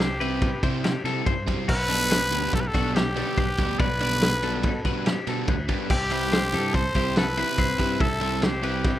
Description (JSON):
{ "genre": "math rock and midwest emo", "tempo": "142 BPM", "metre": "5/4", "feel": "straight", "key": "G major", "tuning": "A4 = 438 Hz", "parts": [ { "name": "growling trumpet", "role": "melody", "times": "0.0-9.0 s", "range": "G4 to C5", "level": "-27 LUFS", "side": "equal", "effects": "slapback echo" }, { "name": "twelve-string electric guitar", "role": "arpeggios", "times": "0.0-9.0 s", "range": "C4 to E5", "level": "-32 LUFS", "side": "left 5 dB", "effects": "slapback echo" }, { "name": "overdriven semi-hollow guitar", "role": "riff", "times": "0.0-8.9 s", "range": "B2 to E4", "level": "-29 LUFS", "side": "right 1 dB", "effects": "none" }, { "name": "fuzz fingered electric bass", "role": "bass", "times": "0.0-9.0 s", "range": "B1 to C3", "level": "-30 LUFS", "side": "equal", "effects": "overdrive" }, { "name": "loose indie drum kit", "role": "drums", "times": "0.0-8.9 s", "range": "crash cymbal, kick drum, ride cymbal, snare drum", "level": "-26 LUFS", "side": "equal", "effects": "none" } ], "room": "little or no reverb", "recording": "rough home demo mix", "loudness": "-22 LUFS", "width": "side -13 dB against mid", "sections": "0.0-9.0 A section", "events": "none", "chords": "0.0 C6; 1.7 G/B; 5.9 C6" }